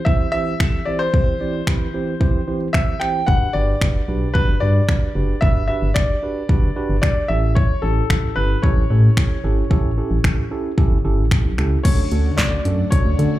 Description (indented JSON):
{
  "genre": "dance-pop",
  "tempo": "112 BPM",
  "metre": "4/4",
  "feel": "straight",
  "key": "D major",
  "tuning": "A4 = 440 Hz",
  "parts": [
    { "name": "clear grand piano", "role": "melody", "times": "0.0-13.4 s", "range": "A4 to G5", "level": "-24 LUFS", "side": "left 1 dB", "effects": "slapback echo" },
    { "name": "tine electric piano", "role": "accompaniment", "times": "0.1-13.4 s", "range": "E3 to D5", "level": "-26 LUFS", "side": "right 3 dB", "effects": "sidechain pumping, slapback echo" },
    { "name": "deep house drum kit", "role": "drums", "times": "0.1-13.3 s", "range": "crash cymbal, finger snaps, handclaps, hi-hat, kick drum, snare drum", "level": "-18 LUFS", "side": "equal", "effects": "none" },
    { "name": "organ-like FM bass", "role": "bass", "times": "3.3-13.4 s", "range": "F#1 to D3", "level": "-18 LUFS", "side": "equal", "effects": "sidechain pumping" },
    { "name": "ensemble organ-string", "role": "sustained chords", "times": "11.8-13.4 s", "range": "D3 to F#4", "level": "-26 LUFS", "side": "left 1 dB", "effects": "phaser, ensemble chorus, sidechain pumping" }
  ],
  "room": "little or no reverb",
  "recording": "live gig heard through the venue's PA, club reverb",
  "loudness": "-16 LUFS",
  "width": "side -15 dB against mid",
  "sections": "0.0-11.9 A section; 11.9-13.4 B section",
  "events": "none",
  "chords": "0.0 C/E; 3.3 Gmaj7; 7.3 A7; 11.9 Dmaj7"
}